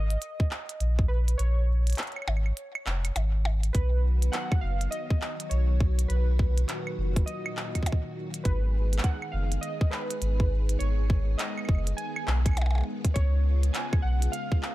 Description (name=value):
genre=IDM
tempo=102 BPM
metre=4/4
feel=swing 62% on 16ths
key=B lydian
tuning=A4 = 441 Hz
part: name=warbly lo-fi synth keys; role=melody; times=0.0-14.7 s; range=B4 to G#5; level=-37 LUFS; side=right 2 dB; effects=chorus, vintage 12-bit sampler grit, tape echo
part: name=warm sub bass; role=bass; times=0.0-14.3 s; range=E#1 to C#2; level=-24 LUFS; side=equal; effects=none
part: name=glitchy drum kit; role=drums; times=0.1-14.7 s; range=claves, handclaps, hi-hat, percussion blips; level=-35 LUFS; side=equal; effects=overdrive
part: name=electronic kick drum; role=drums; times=0.4-14.6 s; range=none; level=-25 LUFS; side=equal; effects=overdrive
part: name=soft string machine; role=sustained chords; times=3.7-14.7 s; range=A#2 to G#4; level=-37 LUFS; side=equal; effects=ensemble chorus
room=digital ambience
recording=none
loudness=-25 LUFS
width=side -16 dB against mid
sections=0.0-14.7 A section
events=kick drops out 1.4-3.7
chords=0.0 A#m; 3.7 B; 8.5 G#m; 13.2 C#7